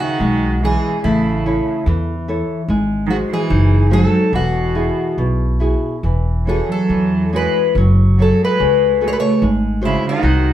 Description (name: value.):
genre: fado-style ballad.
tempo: 72 BPM.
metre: 2/4.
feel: rubato.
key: unclear.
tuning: A4 = 440 Hz.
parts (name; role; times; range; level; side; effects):
fingerpicked twelve-string acoustic guitar; melody; 0.0-10.5 s; E4 to C#5; -19 LUFS; left 3 dB; none.
rich cello; second line; 0.0-10.5 s; B2 to A3; -21 LUFS; right 3 dB; slapback echo.
nylon-string guitar; accompaniment; 0.0-10.5 s; B2 to E5; -20 LUFS; equal; none.
upright bass; bass; 0.2-10.5 s; E1 to E2; -17 LUFS; equal; none.
room: wet studio reverb, RT60 0.6 s.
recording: heard from further back in the room.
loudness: -14 LUFS.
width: side -11 dB against mid.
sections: 0.0-10.5 A section.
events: none.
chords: 0.0 C#m; 1.0 A; 2.7 G#7; 4.3 Eadd9; 6.0 A6/E; 7.8 F#madd9; 9.4 G#7.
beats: 0.19 | 1.03 1.86 | 2.69 3.51 | 4.34 5.19 | 6.04 6.90 | 7.75 8.60 | 9.42 10.23.